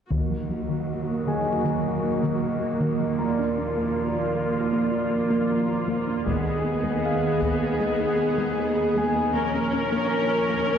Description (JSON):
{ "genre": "cinematic, hybrid orchestral and electronic film score", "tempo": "78 BPM", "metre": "4/4", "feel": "straight", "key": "Eb minor", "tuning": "A4 = 440 Hz", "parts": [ { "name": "clear symphonic viola section", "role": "accompaniment", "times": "0.1-10.8 s", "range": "Bb3 to Bb4", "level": "-28 LUFS", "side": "equal", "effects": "low-pass filter" }, { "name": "chorused pulse-width pad", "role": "sustained chords", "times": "0.1-10.8 s", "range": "Eb3 to Eb5", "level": "-26 LUFS", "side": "equal", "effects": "low-pass filter" }, { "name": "tight sequenced synth", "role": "arpeggios", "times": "0.1-10.8 s", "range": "Eb3 to Bb4", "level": "-31 LUFS", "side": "left 1 dB", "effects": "chorus, low-pass filter, tape echo" }, { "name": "rich symphonic cello section", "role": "bass", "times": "0.1-10.8 s", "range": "Eb2", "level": "-29 LUFS", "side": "right 4 dB", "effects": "none" }, { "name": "taiko ensemble", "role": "drums", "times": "0.1-1.6, 6.3-7.8 s", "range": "none", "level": "-30 LUFS", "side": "left 2 dB", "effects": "none" }, { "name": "dark concert grand piano", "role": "texture", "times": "1.3-10.8 s", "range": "Ab4 to Bb5", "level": "-33 LUFS", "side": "left 3 dB", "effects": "tape echo" } ], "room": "wet scoring stage reverb, RT60 1.5 s", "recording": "heard from further back in the room", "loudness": "-22 LUFS", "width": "side -8 dB against mid", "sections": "0.1-10.8 A section", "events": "filter sweep 0.1-10.8", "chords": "0.1 Ebm; 3.2 Bb/Eb; 6.3 Abm/Eb; 9.3 Bbm/Eb" }